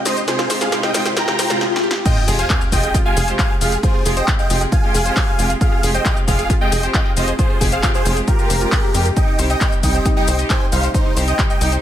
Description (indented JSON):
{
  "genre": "uplifting trance",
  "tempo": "135 BPM",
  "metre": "4/4",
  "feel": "straight",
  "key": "F minor",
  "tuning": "A4 = 441 Hz",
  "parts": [
    { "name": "analog pluck", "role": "arpeggios", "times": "0.0-11.8 s", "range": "Eb4 to G5", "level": "-27 LUFS", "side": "left 1 dB", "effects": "chorus, sidechain pumping, ping-pong delay" },
    { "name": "riser, swell and sub drop", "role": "sound effects", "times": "0.0-3.8 s", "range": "none", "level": "-25 LUFS", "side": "left 2 dB", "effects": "none" },
    { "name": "dense compressed supersaw", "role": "melody", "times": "0.1-11.7 s", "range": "Eb4 to Bb5", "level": "-22 LUFS", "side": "right 1 dB", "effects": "sidechain pumping, ping-pong delay" },
    { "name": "dark studio string section", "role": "sustained chords", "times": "0.1-11.8 s", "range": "C3 to G4", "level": "-25 LUFS", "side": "right 1 dB", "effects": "sidechain pumping" },
    { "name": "punchy analog drum machine", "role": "drums", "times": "0.1-11.8 s", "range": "crash cymbal, handclaps, hi-hat, shaker, snare drum", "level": "-22 LUFS", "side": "left 2 dB", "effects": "high-pass filter on snare, sidechain pumping on hats, high-pass filter on hats, sidechain pumping on perc, high-pass filter on perc, sidechain pumping on cymbals, high-pass filter on cymbals" },
    { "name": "electronic kick drum", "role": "drums", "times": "2.1-11.5 s", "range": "none", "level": "-18 LUFS", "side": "equal", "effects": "none" },
    { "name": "tight sequencer bass", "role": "bass", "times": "2.3-11.8 s", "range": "F1 to F2", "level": "-20 LUFS", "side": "equal", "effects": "sidechain pumping" }
  ],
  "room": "light reverb",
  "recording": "none",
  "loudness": "-14 LUFS",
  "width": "side -11 dB against mid",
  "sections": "0.0-2.1 A section; 2.1-11.8 B section",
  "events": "build-up 0.0-2.1; drum fill 0.0-1.6, 1.6-2.1; riser 0.0-1.6; swell 1.2-2.1; drop 2.1-11.8; impact 2.1-3.8",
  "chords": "0.0 Fmadd9; 9.2 Cm"
}